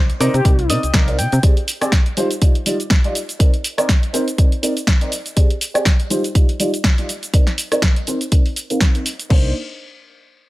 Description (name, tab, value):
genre	filtered disco house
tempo	122 BPM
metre	4/4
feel	swing 56% on 16ths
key	C minor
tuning	A4 = 442 Hz
part	slap-like FM bass	bass	0.0-1.4, 9.3-9.5 s	C2 to C3	-19 LUFS	equal	sidechain pumping, low-pass filter
part	direct-recorded clean electric guitar	riff	0.1-1.4 s	Eb4 to G5	-25 LUFS	left 1 dB	sidechain pumping, low-pass filter
part	punchy analog drum machine	drums	0.1-9.4 s	crash cymbal, hi-hat, rim click, shaker, snare drum	-22 LUFS	equal	none
part	dark baby grand piano	accompaniment	0.2-9.5 s	G3 to F5	-22 LUFS	equal	phaser, sidechain pumping, low-pass filter
part	analog synth brass	melody	0.3-0.7 s	G4	-26 LUFS	left 2 dB	chorus, sidechain pumping, low-pass filter, dub echo
part	electronic kick drum	drums	0.5-9.4 s	none	-14 LUFS	equal	none
room	digital ambience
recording	none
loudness	-14 LUFS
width	side -18 dB against mid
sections	0.0-9.3 A section; 9.3-10.5 B section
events	filter sweep 0.0-9.3; clean electric guitar fill 0.4-1.4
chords	0.0 Cm9; 1.4 Csus2; 2.2 Ebmaj9; 3.4 Cm9; 5.4 Csus2; 6.1 Ebmaj9; 7.3 Cm9